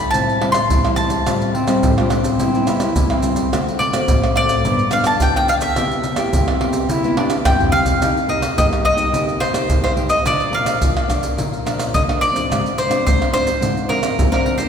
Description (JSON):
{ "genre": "samba and choro", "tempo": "107 BPM", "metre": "4/4", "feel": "straight", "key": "C major, C minor from 8.0 s", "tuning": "A4 = 440 Hz", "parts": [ { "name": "bowl-back mandolin", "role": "melody", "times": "0.0-14.7 s", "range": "Bb4 to C6", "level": "-20 LUFS", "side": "equal", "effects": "none" }, { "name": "nylon-string guitar", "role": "accompaniment", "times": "0.0-14.7 s", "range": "G2 to G4", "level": "-21 LUFS", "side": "left 2 dB", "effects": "none" }, { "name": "maracas, surdo, pandeiro and tamborim", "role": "percussion", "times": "0.1-14.7 s", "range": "none", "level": "-19 LUFS", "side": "right 1 dB", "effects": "none" }, { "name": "clear bass clarinet", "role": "second line", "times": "1.5-8.0 s", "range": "C4 to E4", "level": "-22 LUFS", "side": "equal", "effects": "none" } ], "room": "wet church reverb, RT60 3.1 s", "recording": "recorded in a church or concert hall", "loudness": "-15 LUFS", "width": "side -7 dB against mid", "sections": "0.0-8.0 A section; 8.0-14.7 B section", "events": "drum fill 7.4-8.0", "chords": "0.1 Am7; 1.3 Fadd9/A; 2.4 Cmaj7; 3.5 D7; 4.6 G7; 5.8 Cmaj7; 8.0 Cm7; 10.3 Bb; 12.5 Dm7b5/Ab" }